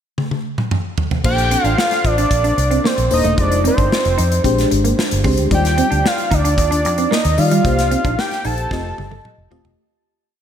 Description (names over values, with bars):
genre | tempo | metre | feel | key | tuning
polished 1980s jazz-funk pop | 112 BPM | 4/4 | straight | Bb major | A4 = 439 Hz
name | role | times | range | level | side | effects
modern studio drum kit | drums | 0.2-9.8 s | crash cymbal, hi-hat, kick drum, snare drum, toms | -21 LUFS | equal | none
FM electric piano with soft pad layer | accompaniment | 1.2-9.8 s | G3 to Eb5 | -22 LUFS | left 3 dB | tremolo, analog chorus
vintage muted fingered electric bass | bass | 1.2-9.7 s | Eb1 to Eb3 | -19 LUFS | equal | none
fat analog lead | melody | 1.3-9.2 s | C5 to A5 | -19 LUFS | equal | diffuse ambient delay
electric guitar at the edge of break-up | riff | 1.4-9.6 s | G3 to F4 | -23 LUFS | right 5 dB | wide subtle chorus
room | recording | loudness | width
moderate lush hall reverb, RT60 2.0 s | dreamy mix soaked in reverb | -14 LUFS | side -9 dB against mid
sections
0.0-1.2 pickup bar; 1.2-9.8 verse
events
drum fill 0.2-1.2, 8.7-9.8; fade-out 7.6-9.8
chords
0.0 N.C.; 1.2 Bbmaj9; 3.4 Fm7; 4.4 Bb13; 5.5 Ebmaj9; 7.6 Cm7; 8.7 F9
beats
0.18 0.71 | 1.25 1.78 2.31 2.85 | 3.38 3.91 4.45 4.98 | 5.51 6.05 6.58 7.11 | 7.65 8.18 8.71 9.25